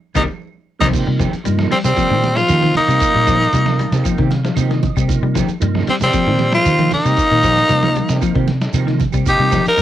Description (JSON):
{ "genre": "afrobeat", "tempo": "115 BPM", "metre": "4/4", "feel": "straight", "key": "C minor", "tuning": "A4 = 440 Hz", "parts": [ { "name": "percussive tonewheel organ", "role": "accompaniment", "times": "0.1-9.8 s", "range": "C3 to A5", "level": "-25 LUFS", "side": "right 8 dB", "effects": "slow rotary speaker, cassette tape" }, { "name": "semi-hollow electric guitar", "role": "stabs", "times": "0.1-9.7 s", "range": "Eb3 to G4", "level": "-29 LUFS", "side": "right 9 dB", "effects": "cassette tape" }, { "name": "claves", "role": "percussion", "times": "0.1-9.6 s", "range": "none", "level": "-36 LUFS", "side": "right 12 dB", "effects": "none" }, { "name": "raspy tenor saxophone", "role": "melody", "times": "0.2-9.8 s", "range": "C4 to Bb4", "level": "-15 LUFS", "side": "left 1 dB", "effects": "cassette tape" }, { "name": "electric guitar at the edge of break-up", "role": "arpeggios", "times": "0.2-9.8 s", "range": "C3 to G3", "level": "-23 LUFS", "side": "left 8 dB", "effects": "cassette tape" }, { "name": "vintage muted fingered electric bass", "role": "bass", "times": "0.2-9.8 s", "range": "C2 to Eb3", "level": "-18 LUFS", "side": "equal", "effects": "none" }, { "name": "lo-fi sampler-style drum kit", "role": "drums", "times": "0.2-9.8 s", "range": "crash cymbal, hi-hat, kick drum, snare drum", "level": "-24 LUFS", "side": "equal", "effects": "cassette tape" }, { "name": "congas", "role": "percussion", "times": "0.2-9.8 s", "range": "none", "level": "-26 LUFS", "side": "right 10 dB", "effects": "none" }, { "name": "shekere", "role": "percussion", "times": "0.2-9.8 s", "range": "none", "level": "-28 LUFS", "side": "right 3 dB", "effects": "none" }, { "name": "growling tenor saxophone", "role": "second line", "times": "1.7-9.8 s", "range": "G3 to Eb4", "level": "-26 LUFS", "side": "right 10 dB", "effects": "cassette tape" } ], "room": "light reverb", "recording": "home recording on cassette", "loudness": "-13 LUFS", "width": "side -12 dB against mid", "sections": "0.9-9.8 A section", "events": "band accent 0.0-0.9; tonewheel organ fill 3.5-5.1", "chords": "0.0 Cm7" }